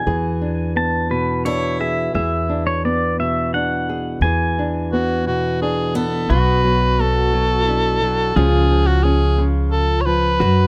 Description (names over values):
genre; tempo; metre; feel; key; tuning
acoustic folk-pop ballad; 58 BPM (dotted quarters); 6/8; straight; unclear; A4 = 442 Hz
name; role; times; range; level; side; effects
pedal steel guitar; second line; 0.0-10.7 s; E#4 to A5; -26 LUFS; equal; none
nylon-string guitar; accompaniment; 0.0-10.7 s; F#2 to G#4; -25 LUFS; equal; none
upright bass; bass; 0.0-10.7 s; B1 to F#2; -23 LUFS; equal; none
picked swing-style acoustic guitar; arpeggios; 1.5-2.7, 6.0-6.6 s; B3 to E4; -31 LUFS; equal; none
clear cor anglais; melody; 4.9-10.7 s; F#4 to C#5; -22 LUFS; equal; none
room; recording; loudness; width
little or no reverb; close, detailed microphones; -19 LUFS; mono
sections
0.0-6.3 A section; 6.3-10.7 B section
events
pedal steel guitar solo 0.0-6.3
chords
0.0 E7; 6.3 Bm; 8.4 C#